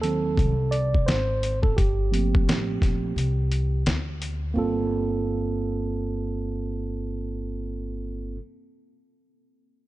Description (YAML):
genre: hip hop, jazz-hop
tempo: 86 BPM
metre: 4/4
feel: swing 59% on 16ths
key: G minor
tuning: A4 = 440 Hz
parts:
  - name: mellow tine electric piano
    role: accompaniment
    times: 0.0-8.4 s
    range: Eb3 to D5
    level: -27 LUFS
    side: right 4 dB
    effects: none
  - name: upright bass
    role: bass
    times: 0.0-8.4 s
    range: G1 to Eb2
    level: -27 LUFS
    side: equal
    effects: none
  - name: dusty soul sampler-style drum kit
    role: drums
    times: 0.0-4.4 s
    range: hi-hat, kick drum, snare drum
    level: -24 LUFS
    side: left 1 dB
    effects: overdrive, vintage 12-bit sampler grit
room: studio ambience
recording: dark, warm production, nothing above 10.9 kHz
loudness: -23 LUFS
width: side -16 dB against mid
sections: 0.0-4.6 A section; 4.6-7.4 B section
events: tine electric piano solo 0.0-4.6; break 3.2-4.6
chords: 0.0 D7b9; 1.8 Gm11